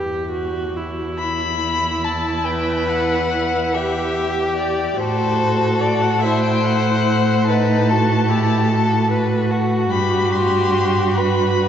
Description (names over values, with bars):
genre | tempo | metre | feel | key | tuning
classical, slow romantic movement for string quartet | 48 BPM (dotted quarters) | 12/8 | rubato | E minor | A4 = 440 Hz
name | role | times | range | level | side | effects
clear viola | accompaniment | 0.0-11.7 s | D#4 to G4 | -23 LUFS | right 2 dB | none
rich cello | bass | 0.0-11.7 s | E2 to A2 | -20 LUFS | right 1 dB | none
clear violin | melody | 1.2-11.7 s | C5 to C6 | -23 LUFS | left 4 dB | none
rich violin | second line | 2.5-11.7 s | F#4 to C5 | -22 LUFS | left 2 dB | none
room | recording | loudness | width
wet church reverb, RT60 3.5 s | dark, warm production, nothing above 7.6 kHz | -16 LUFS | side -9 dB against mid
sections
0.0-11.7 A section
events
none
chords
0.0 Em; 5.0 F#dim/A; 7.5 B7/A; 9.9 Gmaj7